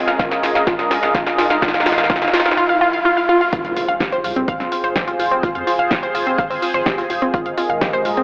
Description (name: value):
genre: melodic techno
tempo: 126 BPM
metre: 4/4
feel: straight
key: F minor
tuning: A4 = 441 Hz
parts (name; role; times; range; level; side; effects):
- sweeping resonant pad; sustained chords; 0.0-8.2 s; Eb3 to F5; -21 LUFS; equal; chorus, sidechain pumping
- riser and impact; sound effects; 0.0-5.4 s; none; -24 LUFS; equal; none
- wide unison pluck; arpeggios; 0.1-8.2 s; C4 to F5; -18 LUFS; equal; sidechain pumping, tape echo
- punchy analog drum machine; drums; 0.1-8.2 s; hi-hat, snare drum; -21 LUFS; equal; high-pass filter on snare, high-pass filter on hats, high-pass filter on room
- electronic kick drum; drums; 0.2-7.9 s; none; -24 LUFS; equal; none
- jazz brush drum kit; drums; 3.5-8.2 s; hi-hat, snare drum; -34 LUFS; equal; none
- round analog bass; bass; 3.6-8.2 s; Eb1 to F2; -36 LUFS; equal; sidechain pumping
room: wet lush hall reverb, RT60 2.0 s, digital ambience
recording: dry, gritty hardware recording, transformer saturation, cassette tape, AM radio sound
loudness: -15 LUFS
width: side -28 dB against mid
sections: 0.0-3.5 A section; 3.5-8.2 B section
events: build-up 0.0-3.5; drum fill 0.0-2.6; riser 0.0-3.5; drop 3.5-8.2; impact 3.5-5.4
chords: 0.0 Absus2; 1.6 Ebsus2; 3.5 Fm; 7.3 Ebsus2